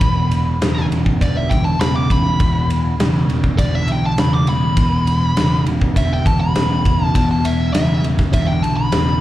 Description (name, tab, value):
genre	blues rock power trio and southern rock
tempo	101 BPM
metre	4/4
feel	straight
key	unclear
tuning	A4 = 438 Hz
part	smooth overdriven lead guitar	melody	0.0-9.2 s	D5 to D6	-23 LUFS	equal	slapback echo
part	crunchy overdriven guitar	riff	0.0-9.2 s	E2 to D3	-20 LUFS	equal	phaser, slapback echo
part	vintage muted picked electric bass	bass	0.0-9.2 s	E1 to B1	-19 LUFS	equal	none
part	big rock drum kit	drums	0.0-9.1 s	kick drum, ride cymbal, snare drum	-20 LUFS	equal	none
room	light reverb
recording	live gig heard through the venue's PA, club reverb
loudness	-14 LUFS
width	side -14 dB against mid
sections	0.0-9.2 A section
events	lead electric guitar solo 0.0-9.2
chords	0.0 E5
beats	| 0.01 0.61 1.20 1.80 | 2.40 2.99 3.59 4.18 | 4.78 5.37 5.97 6.56 | 7.15 7.75 8.34 8.94